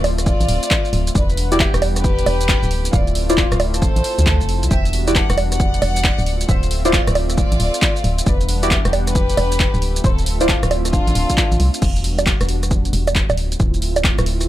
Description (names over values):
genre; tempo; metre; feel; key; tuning
UK garage, two-step garage; 135 BPM; 4/4; swing 65% on 16ths; E phrygian; A4 = 440 Hz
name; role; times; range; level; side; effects
warm analog pad; sustained chords; 0.0-14.5 s; G3 to F#5; -29 LUFS; equal; chorus, tremolo, sidechain pumping
organ-like FM bass; bass; 0.0-14.5 s; D1 to D2; -19 LUFS; equal; none
punchy analog drum machine; drums; 0.0-14.5 s; bongos, crash cymbal, handclaps, hi-hat, rim click, shaker; -21 LUFS; right 2 dB; none
warm studio violin section; melody; 0.2-11.8 s; D4 to A5; -24 LUFS; left 1 dB; dub echo
electronic kick drum; drums; 0.3-14.2 s; none; -19 LUFS; equal; none
deep mellow chord stab; stabs; 1.5-10.5 s; E4 to D5; -21 LUFS; equal; wide subtle chorus, dub echo
room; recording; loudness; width
little or no reverb; none; -15 LUFS; side -14 dB against mid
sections
0.0-11.8 A section; 11.8-14.5 B section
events
drop 0.0-11.8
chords
0.0 Dm9; 1.2 Em9; 2.7 Dm9; 4.7 Em9; 6.3 Dm9; 8.3 Em9; 9.8 Dm9; 11.8 Em9; 13.4 Dm9